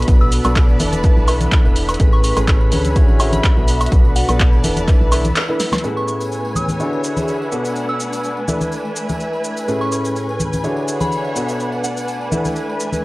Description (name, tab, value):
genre	piano house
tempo	125 BPM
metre	4/4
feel	swing 54% on 16ths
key	A major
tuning	A4 = 435 Hz
part	analog string pad	sustained chords	0.0-13.0 s	B4 to B5	-27 LUFS	equal	ensemble chorus, sidechain pumping
part	warm concert grand piano	riff	0.0-13.0 s	A2 to C#5	-22 LUFS	equal	sidechain pumping, low-pass filter
part	organ-like FM bass	bass	0.0-5.3 s	E1 to D2	-20 LUFS	equal	sidechain pumping
part	punchy analog drum machine	drums	0.0-13.0 s	cabasa, handclaps, hi-hat, snare drum, woodblock	-23 LUFS	equal	none
part	warm symphonic string section	texture	0.0-13.0 s	A3 to A5	-27 LUFS	equal	sidechain pumping
part	electronic kick drum	drums	0.1-5.0 s	none	-13 LUFS	equal	none
part	tambourine and congas	percussion	0.1-13.0 s	none	-25 LUFS	left 1 dB	none
part	soft synth bell	melody	0.2-12.3 s	F#5 to E6	-27 LUFS	equal	chorus, phaser, tape echo
room	light reverb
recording	home recording on cassette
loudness	-14 LUFS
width	side -21 dB against mid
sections	0.0-5.8 A section; 5.8-13.0 B section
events	break 5.4-5.8; band accent 5.4; drum fill 5.6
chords	0.0 Bm7; 0.8 E7sus4; 2.0 Amaj9; 3.0 Dmaj9#11; 3.7 Bm7; 4.6 E7sus4; 5.8 Amaj9; 6.8 Dmaj9#11; 7.5 Bm7; 8.5 E7sus4; 9.7 Amaj9; 10.6 Dmaj9#11; 11.4 Bm7; 12.3 E7sus4